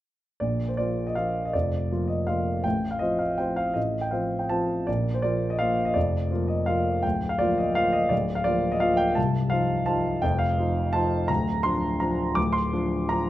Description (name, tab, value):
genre	classical, piano waltz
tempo	154-178 BPM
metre	3/4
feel	rubato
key	Bb major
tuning	A4 = 440 Hz
part	warm grand piano	solo	0.4-13.3 s	C1 to D6	-23 LUFS	equal	none
room	light reverb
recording	close, detailed microphones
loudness	-23 LUFS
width	side -14 dB against mid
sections	0.4-13.3 A section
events	none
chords	0.4 Bb; 2.6 F/A; 4.9 Bb; 7.0 Bb/D; 9.2 F7/C; 11.3 Bb/D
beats	| 0.41 0.78 1.16 | 1.54 1.90 2.27 | 2.65 3.02 3.40 | 3.76 4.13 4.50 | 4.87 5.23 5.60 | 5.95 6.31 6.67 | 7.04 7.40 7.77 | 8.12 8.46 8.82 | 9.17 9.52 9.87 | 10.23 10.58 10.94 | 11.29 11.64 12.01 | 12.37 12.73 13.11